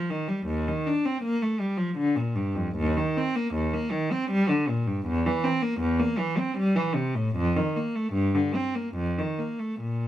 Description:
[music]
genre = classical, baroque-style suite movement for unaccompanied cello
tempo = 69-81 BPM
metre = 3/4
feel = rubato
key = unclear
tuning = A4 = 440 Hz
[part]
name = rich cello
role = solo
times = 0.0-10.1 s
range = Eb2 to D4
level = -24 LUFS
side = equal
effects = none
[sound]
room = light reverb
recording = minimal, uncompressed stereo recording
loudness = -24 LUFS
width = side -12 dB against mid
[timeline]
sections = 0.0-10.1 A section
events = none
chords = none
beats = | 0.47 1.22 1.96 | 2.75 3.53 4.30 | 5.07 5.81 6.57 | 7.36 8.15 8.97 | 9.81

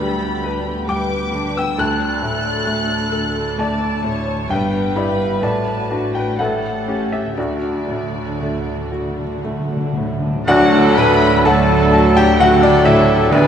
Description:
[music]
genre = classical, romantic movement for piano and orchestra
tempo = 56-70 BPM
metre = 3/4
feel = rubato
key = D major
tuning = A4 = 437 Hz
[part]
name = clear baby grand piano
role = melody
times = 0.0-13.5 s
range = D2 to F#6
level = -18 LUFS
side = left 1 dB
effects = none
[part]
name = dark studio violin section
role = melody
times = 0.0-13.5 s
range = D5 to F#6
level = -26 LUFS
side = left 4 dB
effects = none
[part]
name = dark studio violin section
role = second line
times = 0.0-13.5 s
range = G3 to A4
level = -26 LUFS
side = left 2 dB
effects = none
[part]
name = warm studio viola section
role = accompaniment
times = 0.0-13.5 s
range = E3 to D5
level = -24 LUFS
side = right 2 dB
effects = none
[part]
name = clear chamber double bass section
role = bass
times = 0.0-13.5 s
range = G1 to D2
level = -27 LUFS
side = right 4 dB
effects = none
[part]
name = warm studio cello section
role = bass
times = 0.0-13.5 s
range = D2 to D3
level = -26 LUFS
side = right 4 dB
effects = none
[part]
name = cymbal swell and tam-tam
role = percussion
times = 7.4-13.5 s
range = none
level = barely audible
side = none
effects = none
[part]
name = timpani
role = percussion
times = 7.4-13.5 s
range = D3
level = -26 LUFS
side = left 1 dB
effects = none
[part]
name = clear oboe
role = second line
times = 10.5-13.5 s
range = D4 to B4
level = -22 LUFS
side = right 1 dB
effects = none
[part]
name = concert flute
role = second line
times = 10.5-13.5 s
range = G#5 to A5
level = -27 LUFS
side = left 2 dB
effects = none
[part]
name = warm bassoon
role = accompaniment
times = 10.5-13.5 s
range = E3 to F#3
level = -24 LUFS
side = right 2 dB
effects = none
[part]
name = clear trombone section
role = sustained chords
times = 10.5-13.5 s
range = D3 to F#3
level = -24 LUFS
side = right 3 dB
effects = none
[part]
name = dark French horn section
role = sustained chords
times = 10.5-13.5 s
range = A3 to E4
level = -23 LUFS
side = left 2 dB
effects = none
[part]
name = clear trumpet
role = stabs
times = 10.5-13.5 s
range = G#4 to A4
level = -23 LUFS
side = right 4 dB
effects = none
[sound]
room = wet concert hall reverb, RT60 2.5 s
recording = none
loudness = -14 LUFS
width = side -8 dB against mid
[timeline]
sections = 0.0-10.5 A section; 10.5-13.5 B section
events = timpani fill 7.4-10.5; band accent 10.5-11.5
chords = 0.0 G/D; 1.8 D; 4.5 Em/G; 5.4 D/A; 6.4 A7; 7.4 D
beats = 0.02 0.89 | 1.80 2.67 3.59 | 4.51 5.42 6.39 | 7.37 8.39 9.43 | 10.47 11.45 12.40 | 13.32

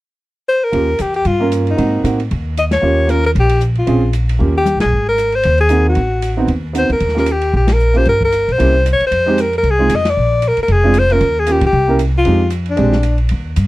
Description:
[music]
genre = jazz, small-group swing and bop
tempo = 229 BPM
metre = 4/4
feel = swing 58% on 8ths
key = Eb mixolydian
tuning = A4 = 440 Hz
[part]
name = clear alto saxophone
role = melody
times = 0.5-13.2 s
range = D4 to Eb5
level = -15 LUFS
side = left 2 dB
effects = none
[part]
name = warm baby grand piano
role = accompaniment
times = 0.7-12.9 s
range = Ab3 to Bb4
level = -18 LUFS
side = right 3 dB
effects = none
[part]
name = upright bass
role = bass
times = 0.7-13.7 s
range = F1 to A2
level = -16 LUFS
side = equal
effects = none
[part]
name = open jazz drum kit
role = drums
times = 0.7-13.6 s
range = hi-hat, kick drum, ride cymbal, snare drum, toms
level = -27 LUFS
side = equal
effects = none
[sound]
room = studio ambience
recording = dry, close 1970s-style studio recording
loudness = -12 LUFS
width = side -18 dB against mid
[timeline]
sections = 0.7-13.3 A section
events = band accent 2.7, 4.8, 7.7, 10.0, 11.6; drum fill 4.7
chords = 0.0 N.C.; 0.7 Eb7; 1.8 Ab7; 2.8 Eb7; 3.9 Bbm7; 4.4 Eb7; 4.9 Ab7; 6.0 Adim7; 7.0 Eb7; 8.1 Gm; 8.6 C7b9; 9.1 Fm7; 10.2 Bb7; 11.2 Eb7; 11.7 C7b9; 12.3 Fm7; 12.8 Bb7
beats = 0.20 0.46 | 0.73 0.99 1.25 1.51 | 1.77 2.04 2.30 2.56 | 2.82 3.09 3.35 3.61 | 3.87 4.13 4.40 4.66 | 4.92 5.18 5.45 5.71 | 5.97 6.23 6.49 6.76 | 7.02 7.28 7.54 7.81 | 8.07 8.33 8.59 8.86 | 9.12 9.38 9.64 9.90 | 10.16 10.43 10.69 10.95 | 11.21 11.47 11.74 12.00 | 12.26 12.52 12.78 13.04 | 13.31 13.57

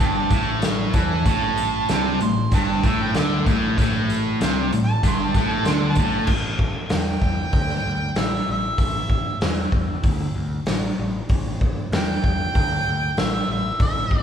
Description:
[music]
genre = blues rock power trio and southern rock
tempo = 96 BPM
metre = 4/4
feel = straight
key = A minor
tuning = A4 = 442 Hz
[part]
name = warm harmonica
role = melody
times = 0.0-14.2 s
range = E5 to C6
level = -27 LUFS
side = right 3 dB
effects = overdrive, tape echo
[part]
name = overdriven electric guitar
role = riff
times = 0.0-6.3 s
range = G2 to E3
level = -22 LUFS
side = equal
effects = none
[part]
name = growling picked electric bass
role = bass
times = 0.0-14.2 s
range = G1 to E2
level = -28 LUFS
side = left 1 dB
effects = overdrive
[part]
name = raw garage drum kit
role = drums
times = 0.3-14.2 s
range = crash cymbal, hi-hat, kick drum, snare drum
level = -22 LUFS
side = equal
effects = none
[sound]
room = moderate large studio reverb, RT60 0.9 s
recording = band playing live in one room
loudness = -19 LUFS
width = side -8 dB against mid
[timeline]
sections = 0.0-6.3 A section; 6.3-14.2 B section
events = harmonica solo 6.3-14.2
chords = 0.0 Am; 6.3 A5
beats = 0.00 0.63 | 1.26 1.89 2.52 3.15 | 3.78 4.41 5.04 5.67 | 6.30 6.92 7.55 8.18 | 8.80 9.43 10.06 10.68 | 11.31 11.94 12.56 13.19 | 13.81

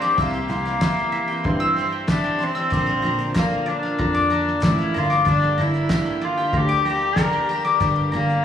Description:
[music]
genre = indie folk with a building arrangement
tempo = 94 BPM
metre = 4/4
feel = straight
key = G dorian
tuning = A4 = 440 Hz
[part]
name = warm cello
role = melody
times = 0.0-8.4 s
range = Bb3 to Bb4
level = -23 LUFS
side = equal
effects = slapback echo, analog delay
[part]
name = dark upright piano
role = accompaniment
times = 0.0-8.4 s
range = G1 to E5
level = -35 LUFS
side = right 4 dB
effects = none
[part]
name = picked twelve-string acoustic guitar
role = accompaniment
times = 0.0-8.4 s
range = G2 to Bb4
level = -32 LUFS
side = left 4 dB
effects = lush chorus, slapback echo
[part]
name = warm chamber string section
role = sustained chords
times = 0.0-8.4 s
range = D3 to G4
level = -32 LUFS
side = equal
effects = none
[part]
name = mandolin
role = arpeggios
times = 0.0-8.4 s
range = D5 to E6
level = -25 LUFS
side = left 4 dB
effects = slapback echo
[part]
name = picked electric bass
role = bass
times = 0.0-8.4 s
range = G1 to G2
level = -24 LUFS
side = equal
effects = none
[part]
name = cloth-damped thuddy drum kit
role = drums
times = 0.0-8.2 s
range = kick drum, snare drum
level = -25 LUFS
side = equal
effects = none
[part]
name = group handclap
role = percussion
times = 0.8-7.3 s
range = none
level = -34 LUFS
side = left 6 dB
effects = slapback echo
[part]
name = tambourine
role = percussion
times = 0.8-7.3 s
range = none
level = -43 LUFS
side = right 4 dB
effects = none
[sound]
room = light reverb, small room ambience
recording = live gig heard through the venue's PA, club reverb, studio reverb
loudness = -18 LUFS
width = side -8 dB against mid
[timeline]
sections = 0.0-8.4 A section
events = none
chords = 0.2 C; 2.7 Bb; 5.3 Gm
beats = | 0.18 0.82 1.45 2.09 | 2.73 3.36 4.00 4.63 | 5.27 5.91 6.54 7.18 | 7.81

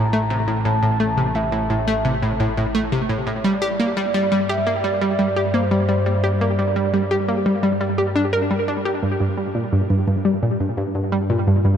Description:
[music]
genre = ambient, sequencer-driven space music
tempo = 86 BPM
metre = 4/4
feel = straight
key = unclear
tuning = A4 = 438 Hz
[part]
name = mellow horn-like synth lead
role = melody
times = 0.0-8.3 s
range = C5 to Bb5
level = -25 LUFS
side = right 1 dB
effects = chorus, analog delay
[part]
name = analog pluck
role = riff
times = 0.0-11.8 s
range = G2 to Bb4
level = -19 LUFS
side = equal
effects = chorus, analog delay
[part]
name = analog drone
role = bass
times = 0.0-11.8 s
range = A1 to G2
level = -25 LUFS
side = equal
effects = chorus
[sound]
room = wet huge ambient reverb, RT60 8.4 s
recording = in a vast, echoing space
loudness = -18 LUFS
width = side -8 dB against mid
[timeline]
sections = 0.0-9.0 A section; 9.0-11.8 B section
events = none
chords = 0.0 Am; 3.4 Gm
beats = | 0.65 1.35 2.05 2.75 | 3.44 4.14 4.84 5.54 | 6.24 6.93 7.63 8.33 | 9.03 9.72 10.42 11.12

